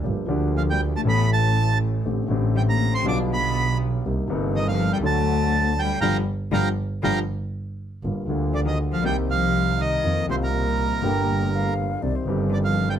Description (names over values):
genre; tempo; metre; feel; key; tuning
tango; 120 BPM; 4/4; rubato; G minor; A4 = 441 Hz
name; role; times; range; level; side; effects
warm concert grand piano; accompaniment; 0.0-13.0 s; G1 to A4; -25 LUFS; left 2 dB; none
warm double bass; bass; 0.1-13.0 s; G1 to F2; -24 LUFS; right 2 dB; none
bandoneon; melody; 0.6-12.9 s; Bb4 to D6; -25 LUFS; right 4 dB; none
warm cello; second line; 0.6-12.9 s; Bb2 to D4; -29 LUFS; left 8 dB; none
breathy mellow concert flute; second line; 11.0-12.4 s; C5 to G5; -30 LUFS; left 5 dB; none
room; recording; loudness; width
little or no reverb; close, detailed microphones; -20 LUFS; side -9 dB against mid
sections
0.0-8.0 A section; 8.0-13.0 A section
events
band accent 6.0-8.0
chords
0.0 Gm7; 1.1 A; 2.1 D7sus4/A; 3.0 G7/B; 4.0 Cm7; 5.0 D; 6.0 Gm7; 9.0 Cm7; 10.0 F7sus4; 11.0 Gm; 12.0 Cm